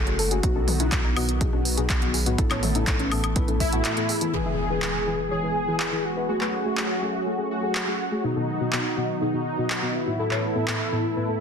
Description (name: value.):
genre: progressive house.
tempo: 123 BPM.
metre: 4/4.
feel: straight.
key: E major.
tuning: A4 = 440 Hz.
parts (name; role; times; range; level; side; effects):
warm analog pad; sustained chords; 0.0-11.4 s; C#3 to A4; -32 LUFS; right 1 dB; chorus, sidechain pumping.
soft round pluck; arpeggios; 0.0-4.3 s; A3 to A4; -31 LUFS; left 1 dB; analog chorus, sidechain pumping, tape echo.
deep mellow chord stab; stabs; 0.0-11.4 s; A2 to E5; -29 LUFS; left 3 dB; chorus, sidechain pumping, tape echo.
saturated sub bass; bass; 0.0-3.8 s; F#1 to B1; -27 LUFS; right 1 dB; sidechain pumping.
deep house drum kit; drums; 0.1-10.8 s; handclaps, hi-hat, woodblock; -28 LUFS; equal; none.
electronic kick drum; drums; 0.4-3.7 s; none; -25 LUFS; equal; none.
electronic congas and toms; percussion; 0.6-3.6 s; none; -32 LUFS; left 5 dB; sidechain pumping on perc, sidechain pumping on toms.
wide unison lead; melody; 3.6-11.4 s; D#4 to G#4; -27 LUFS; equal; ensemble chorus, tape echo.
impact; sound effects; 4.3-6.3 s; none; -33 LUFS; right 1 dB; none.
room: light reverb, digital ambience.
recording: dense, heavily limited modern master.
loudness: -22 LUFS.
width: side -6 dB against mid.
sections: 0.0-4.3 A section; 4.3-11.4 B section.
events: impact 4.3-6.3.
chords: 0.4 B; 2.4 Asus2; 4.3 E; 6.3 F#madd9; 8.2 B; 10.2 Asus2.